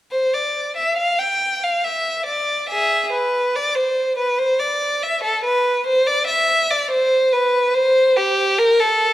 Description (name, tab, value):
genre	classical, baroque-style suite movement for unaccompanied violin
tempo	71 BPM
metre	3/4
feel	rubato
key	unclear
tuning	A4 = 439 Hz
part	rich violin	solo	0.1-9.1 s	G4 to G5	-16 LUFS	equal	none
room	moderate recital hall reverb, RT60 1.8 s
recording	none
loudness	-16 LUFS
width	side -14 dB against mid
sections	0.1-9.1 A section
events	none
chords	none